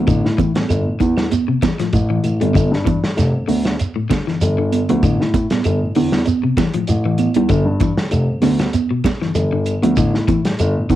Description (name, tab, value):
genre	afrobeat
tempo	97 BPM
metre	4/4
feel	swing 55% on 16ths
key	unclear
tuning	A4 = 440 Hz
part	electric guitar at the edge of break-up	arpeggios	0.0-11.0 s	A2 to G3	-21 LUFS	left 5 dB	none
part	dark baby grand piano	bass	0.0-11.0 s	F1 to A2	-18 LUFS	left 1 dB	transformer saturation
part	warm soul drum kit	drums	0.1-11.0 s	hi-hat, kick drum, snare drum	-21 LUFS	equal	none
part	claves	percussion	0.1-10.8 s	none	-40 LUFS	right 9 dB	none
part	shekere	percussion	0.1-11.0 s	none	-23 LUFS	right 2 dB	none
part	congas	percussion	0.4-11.0 s	none	-20 LUFS	right 7 dB	none
room	light reverb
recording	home recording on cassette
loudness	-15 LUFS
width	side -13 dB against mid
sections	0.0-11.0 A section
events	none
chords	0.1 A7(no3); 2.6 G5; 5.0 A5; 7.5 G5; 10.0 A7(no3)